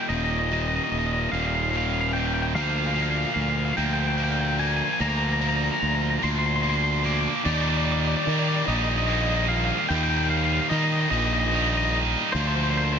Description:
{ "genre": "post-rock", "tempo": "49 BPM (dotted quarters)", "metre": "6/8", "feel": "straight", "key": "Eb major", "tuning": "A4 = 440 Hz", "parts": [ { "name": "twangy electric guitar", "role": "melody", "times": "0.0-13.0 s", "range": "C5 to D6", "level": "-26 LUFS", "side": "left 2 dB", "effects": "slapback echo" }, { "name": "distorted electric guitar", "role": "riff", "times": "0.0-13.0 s", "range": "Eb2 to F4", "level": "-26 LUFS", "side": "right 2 dB", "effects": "distortion, slapback echo" }, { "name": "fuzz fingered electric bass", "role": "bass", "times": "0.1-13.0 s", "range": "Eb1 to Eb3", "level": "-26 LUFS", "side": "equal", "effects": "overdrive" } ], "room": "moderate lush hall reverb, RT60 2.6 s", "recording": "big arena sound, nothing above 7.6 kHz", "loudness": "-21 LUFS", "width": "side -7 dB against mid", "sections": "0.0-7.5 A section; 7.5-13.0 B section", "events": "build-up 0.0-7.5", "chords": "0.0 Eb5; 2.6 Bb/D; 7.5 Ebmaj7; 12.3 Bb" }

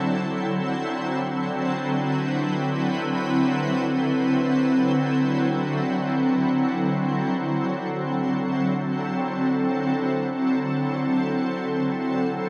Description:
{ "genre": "ambient", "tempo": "free time", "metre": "none", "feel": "none", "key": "D mixolydian", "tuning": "A4 = 440 Hz", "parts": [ { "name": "shimmering ambient pad", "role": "solo", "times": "0.0-12.5 s", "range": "D3 to B4", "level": "-24 LUFS", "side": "equal", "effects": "chorus, built-in reverb, diffuse ambient delay" } ], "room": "wet lush hall reverb, RT60 2.9 s", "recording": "none", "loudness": "-24 LUFS", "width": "mono", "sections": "0.0-5.8 A section; 5.8-12.5 B section", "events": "none", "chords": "0.0 D9" }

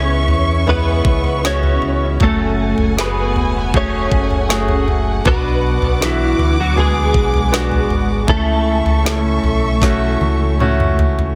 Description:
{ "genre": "pop ballad", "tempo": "78 BPM", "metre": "4/4", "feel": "straight", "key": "A major", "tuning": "A4 = 440 Hz", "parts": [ { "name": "direct-recorded clean electric guitar", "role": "melody", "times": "0.0-10.6 s", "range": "E3 to C#5", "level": "-23 LUFS", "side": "equal", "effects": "ensemble chorus, digital delay" }, { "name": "clear baby grand piano", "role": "accompaniment", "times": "0.0-11.4 s", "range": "B2 to A4", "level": "-24 LUFS", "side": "equal", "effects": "none" }, { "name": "warm studio string section", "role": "sustained chords", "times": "0.0-11.4 s", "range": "A4 to D6", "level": "-28 LUFS", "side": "equal", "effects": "none" }, { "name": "fingerpicked steel-string acoustic guitar", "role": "arpeggios", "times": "0.0-11.4 s", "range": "F#2 to G#4", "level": "-28 LUFS", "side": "equal", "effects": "none" }, { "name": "sub bass with octave", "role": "bass", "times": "0.0-11.3 s", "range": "E1 to E2", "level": "-21 LUFS", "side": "equal", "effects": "none" }, { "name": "smooth R&B drum kit", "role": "drums", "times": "0.3-11.4 s", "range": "kick drum, snare drum, toms", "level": "-21 LUFS", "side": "equal", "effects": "none" } ], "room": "light reverb", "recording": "dense, heavily limited modern master", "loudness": "-16 LUFS", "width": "mono", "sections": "0.0-11.4 A section", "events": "drum fill 9.8-11.4", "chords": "0.0 C#m7; 2.2 F#madd9; 5.3 Bm; 8.3 A" }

